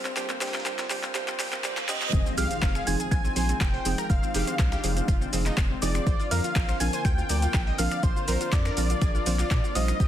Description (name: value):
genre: progressive house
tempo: 122 BPM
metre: 4/4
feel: straight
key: unclear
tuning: A4 = 440 Hz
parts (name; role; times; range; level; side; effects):
- lush unison pad; sustained chords; 0.0-10.1 s; D3 to G4; -38 LUFS; equal; chorus, vintage 12-bit sampler grit, sidechain pumping
- analog pluck; arpeggios; 0.0-10.1 s; C4 to Eb5; -35 LUFS; left 1 dB; chorus, sidechain pumping, tape echo
- deep mellow chord stab; stabs; 0.0-10.1 s; F3 to C5; -34 LUFS; right 2 dB; chorus, sidechain pumping, tape echo
- deep house drum kit; drums; 0.0-10.1 s; finger snaps, handclaps, hi-hat, shaker; -32 LUFS; left 1 dB; high-pass filter on snare, high-pass filter on hats, high-pass filter on perc
- riser, reverse cymbal and impact; sound effects; 1.4-4.1 s; none; -36 LUFS; right 2 dB; none
- dusty soul sampler-style drum kit; drums; 0.2-10.1 s; hi-hat, snare drum; -43 LUFS; right 1 dB; none
- wide unison lead; melody; 1.9-10.1 s; C5 to Ab5; -32 LUFS; equal; cassette tape, sidechain pumping, tape echo
- saturated sub bass; bass; 2.1-10.1 s; F1 to Bb2; -28 LUFS; equal; tube saturation, sidechain pumping
- electronic kick drum; drums; 2.1-10.1 s; none; -25 LUFS; equal; none
- soft synth bell; second line; 2.4-10.1 s; C6 to Ab6; -38 LUFS; right 2 dB; chorus, sidechain pumping, tape echo
room: light reverb, digital ambience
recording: dense, heavily limited modern master, high-pass filter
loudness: -23 LUFS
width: side -11 dB against mid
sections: 0.0-2.1 A section; 2.1-10.1 B section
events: build-up 0.0-2.1; drum fill 0.0-2.1; filter sweep on analog synth pad 0.0-2.1; reverse cymbal 1.4-2.1; drop 2.1-10.1; impact 2.1-4.1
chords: 0.0 Gm; 2.1 Fm7; 6.1 Bbadd9